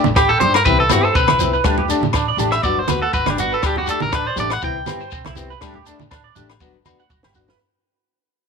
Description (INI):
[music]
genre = highlife guitar band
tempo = 121 BPM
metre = 4/4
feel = swing 54% on 16ths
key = D mixolydian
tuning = A4 = 442 Hz
[part]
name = picked plugged-in steel-string acoustic guitar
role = accompaniment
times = 0.0-7.5 s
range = E3 to G4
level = -25 LUFS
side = left 13 dB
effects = none
[part]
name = clean electric guitar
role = arpeggios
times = 0.0-7.6 s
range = C4 to G5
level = -24 LUFS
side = right 11 dB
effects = analog chorus, slapback echo
[part]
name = congas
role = percussion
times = 0.0-7.6 s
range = none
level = -24 LUFS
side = right 12 dB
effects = none
[part]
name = upright bass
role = bass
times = 0.1-7.5 s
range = G1 to G2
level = -25 LUFS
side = equal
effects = none
[part]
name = shekere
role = percussion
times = 0.1-7.5 s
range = none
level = -29 LUFS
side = left 9 dB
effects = none
[part]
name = electric guitar at the edge of break-up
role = melody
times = 0.2-6.1 s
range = D4 to G5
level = -19 LUFS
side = left 1 dB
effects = none
[part]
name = compact cocktail drum kit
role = drums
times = 0.2-7.6 s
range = hi-hat, kick drum, rim click, snare drum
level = -22 LUFS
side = right 1 dB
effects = none
[part]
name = agogo bells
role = percussion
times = 0.2-7.4 s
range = none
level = -26 LUFS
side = left 12 dB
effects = none
[sound]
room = light reverb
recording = 1960s-style stereo with parts hard left and right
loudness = -15 LUFS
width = side -5 dB against mid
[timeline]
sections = 0.0-7.6 A section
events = fade-out 0.0-7.6; clean electric guitar solo 0.0-7.6; drum fill 6.6-7.6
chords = 0.0 Dsus4; 0.7 Cmaj7; 1.6 Dsus4; 2.6 Gmaj7; 3.6 Dsus4; 4.6 Cmaj7; 5.6 Dsus4; 6.6 Gmaj7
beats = 0.16 0.65 1.15 | 1.64 2.13 2.63 3.13 | 3.62 4.12 4.61 5.11 | 5.61 6.10 6.60 7.10